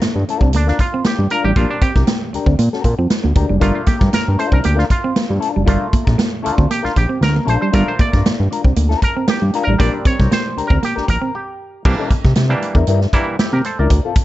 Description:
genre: funk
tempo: 117 BPM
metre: 4/4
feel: straight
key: G dorian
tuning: A4 = 440 Hz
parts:
  - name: mellow electric guitar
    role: accompaniment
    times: 0.0-14.2 s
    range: C4 to Bb4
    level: -23 LUFS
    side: left 7 dB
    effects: wah, spring reverb, plate reverb
  - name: semi-hollow electric guitar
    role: riff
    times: 0.0-11.3 s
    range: G3 to C4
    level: -22 LUFS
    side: right 4 dB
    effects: none
  - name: auto-wah clav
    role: stabs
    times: 0.0-14.0 s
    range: E3 to D5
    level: -22 LUFS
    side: right 2 dB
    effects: plate reverb
  - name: fat analog bass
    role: bass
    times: 0.0-14.0 s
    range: F#1 to C3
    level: -16 LUFS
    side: equal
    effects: none
  - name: swinging big-band drum kit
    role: drums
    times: 0.0-14.2 s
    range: crash cymbal, hi-hat, kick drum, snare drum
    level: -17 LUFS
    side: equal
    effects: none
room: light reverb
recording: dark, warm production, nothing above 7.9 kHz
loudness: -14 LUFS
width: side -15 dB against mid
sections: 0.0-11.9 A section; 11.9-14.2 B section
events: clav solo 0.0-11.9; break 11.3-11.9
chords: 0.0 Gm7; 1.6 Bb6; 3.6 Gm7; 9.8 Bb6; 11.9 C9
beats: 0.02 0.54 1.05 | 1.56 2.08 2.59 3.11 | 3.62 4.14 4.65 5.17 | 5.68 6.19 6.71 7.22 | 7.74 8.25 8.77 9.28 | 9.79 10.31 10.82 11.34 | 11.85 12.37 12.88 13.39 | 13.91

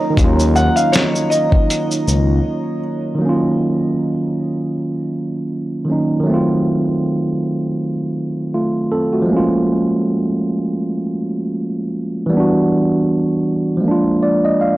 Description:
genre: lo-fi hip hop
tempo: 79 BPM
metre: 4/4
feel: swing 56% on 16ths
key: Eb minor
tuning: A4 = 438 Hz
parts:
  - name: tine electric piano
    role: accompaniment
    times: 0.0-14.8 s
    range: Eb3 to F5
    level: -16 LUFS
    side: right 1 dB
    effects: cassette tape
  - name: deep dark ambient pad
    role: sustained chords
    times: 0.0-3.2 s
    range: Eb4 to Bb5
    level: -24 LUFS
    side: equal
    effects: chorus, built-in reverb
  - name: smooth gliding synth bass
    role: bass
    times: 0.2-2.4 s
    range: Db2 to Eb2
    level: -15 LUFS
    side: left 1 dB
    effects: none
  - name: dusty soul sampler-style drum kit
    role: drums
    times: 0.2-2.3 s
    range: hi-hat, kick drum, shaker, snare drum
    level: -17 LUFS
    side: equal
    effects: none
  - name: felt-muted upright piano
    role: melody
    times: 0.6-2.8 s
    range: Db5 to Gb5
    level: -20 LUFS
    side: left 1 dB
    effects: tape echo
room: moderate plate reverb, RT60 2.5 s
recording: dry, gritty hardware recording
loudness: -15 LUFS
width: side -17 dB against mid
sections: 0.0-3.2 A section; 3.2-14.8 B section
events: break 2.5-3.2; tine electric piano fill 13.8-14.8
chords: 0.0 Ebm7; 6.2 F7b9; 9.3 Bbm7; 12.3 Em7; 13.8 Bb7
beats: | 0.17 0.93 1.69 2.45 | 3.21 3.97 4.73 5.49 | 6.25 7.01 7.77 8.53 | 9.29 10.05 10.81 11.57 | 12.32 13.09 13.84 14.60

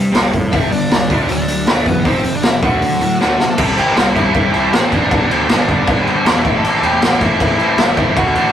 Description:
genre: punk rock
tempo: 157 BPM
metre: 4/4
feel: straight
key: unclear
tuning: A4 = 441 Hz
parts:
  - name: distorted electric guitar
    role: riff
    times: 0.0-8.5 s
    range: F2 to F#4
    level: -18 LUFS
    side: equal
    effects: distortion
  - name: fuzz picked electric bass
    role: bass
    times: 0.0-8.5 s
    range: E1 to D3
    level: -21 LUFS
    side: equal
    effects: overdrive
  - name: raw garage drum kit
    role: drums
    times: 0.1-8.4 s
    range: crash cymbal, hi-hat, kick drum, snare drum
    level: -15 LUFS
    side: equal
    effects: none
  - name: biting overdriven guitar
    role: melody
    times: 0.5-8.5 s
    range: B3 to A5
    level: -20 LUFS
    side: equal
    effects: none
room: light reverb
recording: rough rehearsal-room recording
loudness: -12 LUFS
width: side -10 dB against mid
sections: 0.0-3.6 A section; 3.6-8.5 B section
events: drum fill 3.2-3.6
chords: 0.0 C5; 0.5 G5; 1.1 D; 2.1 F5; 2.6 D; 3.6 C; 5.1 G; 6.4 Am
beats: 0.14 | 0.52 0.90 1.29 1.67 | 2.05 2.43 2.82 3.20 | 3.58 3.96 4.34 4.73 | 5.11 5.49 5.87 6.25 | 6.63 7.02 7.40 7.78 | 8.16

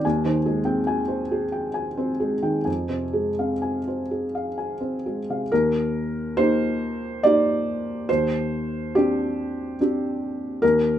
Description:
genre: neoclassical minimalist piano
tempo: 62-73 BPM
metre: 3/4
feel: rubato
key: Eb major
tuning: A4 = 440 Hz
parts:
  - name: felt-muted upright piano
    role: solo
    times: 0.0-11.0 s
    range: Eb2 to Ab5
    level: -21 LUFS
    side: equal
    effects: none
room: light reverb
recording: minimal, uncompressed stereo recording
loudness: -22 LUFS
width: side -10 dB against mid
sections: 0.0-5.5 A section; 5.5-11.0 B section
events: none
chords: 0.0 Abmaj7/Eb; 2.7 Fm; 5.5 Eb; 8.1 Cmadd9/Eb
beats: | 0.04 0.88 1.74 | 2.67 3.63 4.58 | 5.50 6.38 7.23 | 8.08 8.94 9.78 | 10.62

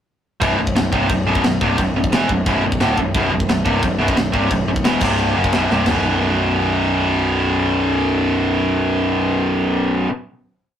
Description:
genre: heavy metal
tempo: 176 BPM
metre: 4/4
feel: straight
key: unclear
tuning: A4 = 440 Hz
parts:
  - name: tight distorted guitar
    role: riff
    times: 0.4-10.1 s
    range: B1 to F#3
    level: -17 LUFS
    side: equal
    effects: distortion
  - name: fuzz picked electric bass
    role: bass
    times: 0.4-10.0 s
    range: B0 to F#1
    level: -22 LUFS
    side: equal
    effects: overdrive
  - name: tight metal drum kit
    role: drums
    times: 0.4-5.9 s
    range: china cymbal, crash cymbal, kick drum, snare drum, toms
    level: -21 LUFS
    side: equal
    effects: none
room: moderate small room reverb, RT60 0.5 s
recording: rough rehearsal-room recording, tube saturation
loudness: -15 LUFS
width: side -9 dB against mid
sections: 0.4-5.9 riff; 5.9-8.6 final chord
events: drum fill 5.7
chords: 0.4 B5; 5.0 C5; 5.4 B5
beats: | 0.42 0.76 1.10 1.44 | 1.78 2.12 2.46 2.80 | 3.14 3.48 3.83 4.17 | 4.50 4.84 5.18 5.52 | 5.86 6.20 6.54 6.88 | 7.22 7.56 7.90 8.24

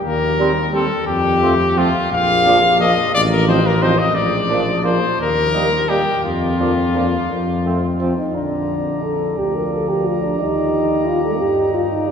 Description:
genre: classical, brass quintet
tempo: 58 BPM (dotted quarters)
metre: 6/8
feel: straight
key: Bb major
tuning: A4 = 440 Hz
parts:
  - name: clear trumpet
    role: melody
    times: 0.0-12.1 s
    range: F4 to Bb5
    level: -19 LUFS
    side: left 3 dB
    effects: none
  - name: dark bass trombone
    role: bass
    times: 0.1-12.1 s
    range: A1 to G2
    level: -21 LUFS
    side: equal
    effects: none
  - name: mellow flugelhorn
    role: second line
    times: 0.4-12.1 s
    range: C4 to D5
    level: -27 LUFS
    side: right 5 dB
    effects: none
  - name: clear trombone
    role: accompaniment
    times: 0.4-12.1 s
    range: D3 to Eb4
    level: -24 LUFS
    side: right 2 dB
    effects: none
  - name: warm French horn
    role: accompaniment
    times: 0.4-12.1 s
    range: G3 to Bb4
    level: -22 LUFS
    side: left 1 dB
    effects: none
room: wet cathedral reverb, RT60 4.9 s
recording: recorded in a church or concert hall, small room ambience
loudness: -15 LUFS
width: side -7 dB against mid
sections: 0.0-8.3 A section; 8.3-12.1 B section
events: none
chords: 0.1 Cm7/Eb; 1.1 F; 2.1 Bb; 3.1 F7/A; 4.2 Bb; 5.2 Eb; 6.2 Bb/F; 7.3 F; 8.3 Bb; 10.4 Eb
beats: | 0.05 1.07 | 2.12 3.14 | 4.16 5.19 | 6.24 7.30 | 8.35 9.38 | 10.40 11.42

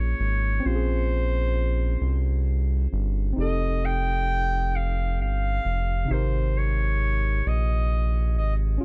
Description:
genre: slow six-eight R&B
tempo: 44 BPM (dotted quarters)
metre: 6/8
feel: straight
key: unclear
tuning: A4 = 440 Hz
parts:
  - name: warm clarinet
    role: melody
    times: 0.0-8.5 s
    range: C5 to G5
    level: -32 LUFS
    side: equal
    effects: none
  - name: tine electric piano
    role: accompaniment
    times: 0.0-8.8 s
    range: C3 to Bb4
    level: -35 LUFS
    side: equal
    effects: none
  - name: round analog bass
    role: bass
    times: 0.0-8.8 s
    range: F1 to C2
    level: -26 LUFS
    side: equal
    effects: none
room: little or no reverb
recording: dark, warm production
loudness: -25 LUFS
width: mono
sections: 0.0-8.8 A section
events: none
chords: 0.0 Eb7sus4 (rootless); 0.6 Bbm9; 3.4 F9; 6.1 Abmaj9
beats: | 0.63 2.00 | 3.36 4.72 | 6.09 7.45 | 8.81

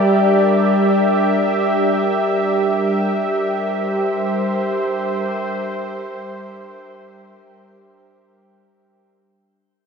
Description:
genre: ambient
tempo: free time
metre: none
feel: none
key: unclear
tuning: A4 = 440 Hz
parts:
  - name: warm analog pad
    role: sustained chords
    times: 0.0-9.1 s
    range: G3 to E5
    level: -18 LUFS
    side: right 1 dB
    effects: chorus, shimmer reverb
  - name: analog drone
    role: drone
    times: 0.0-9.2 s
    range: G3 to D4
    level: -23 LUFS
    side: left 2 dB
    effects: chorus, phaser
  - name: glass harmonica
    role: texture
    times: 0.0-9.2 s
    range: G4 to G5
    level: -25 LUFS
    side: left 2 dB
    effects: shimmer reverb
room: wet concert hall reverb, RT60 2.0 s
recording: none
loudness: -16 LUFS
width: side -6 dB against mid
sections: 0.0-9.1 A section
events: fade-out 0.0-9.1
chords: 0.0 C7/G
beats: free time

